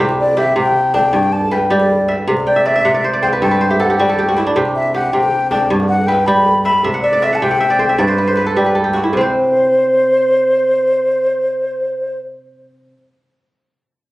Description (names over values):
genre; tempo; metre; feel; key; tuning
west african traditional, West African string and xylophone music; 105 BPM (dotted quarters); 12/8; straight; C lydian; A4 = 440 Hz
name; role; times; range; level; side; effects
kora; arpeggios; 0.0-13.0 s; G2 to G5; -16 LUFS; right 1 dB; none
djembe; percussion; 0.1-9.3 s; none; -24 LUFS; left 2 dB; none
wooden flute; melody; 0.2-12.2 s; B4 to B5; -14 LUFS; left 1 dB; none
room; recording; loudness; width
light reverb; recorded on a phone in the room, club ambience; -12 LUFS; side -18 dB against mid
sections
0.0-9.1 A section; 9.1-11.4 B section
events
kora fill 2.5-4.6, 6.8-9.1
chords
0.0 C5; 1.1 G; 2.3 C; 3.4 N.C.; 4.6 C5; 5.7 G; 6.8 C; 8.0 N.C.